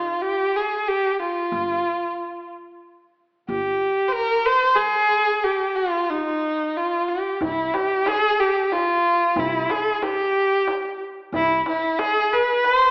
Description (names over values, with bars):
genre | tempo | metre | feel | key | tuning
Persian modal ensemble | 92 BPM | 3/4 | straight | G dastgah shur | A4 = 437 Hz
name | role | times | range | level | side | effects
rich kamancheh | melody | 0.0-12.9 s | Eb4 to C5 | -19 LUFS | equal | none
upright bass | bass | 1.5-3.8, 7.4-11.6 s | G1 to C2 | -34 LUFS | equal | none
tombak | percussion | 7.4-12.8 s | none | -30 LUFS | equal | none
room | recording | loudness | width
wet recital hall reverb, RT60 1.7 s | AM radio sound | -19 LUFS | side -28 dB against mid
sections
0.0-7.4 A section; 7.4-12.9 B section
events
stop 5.4-7.4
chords
none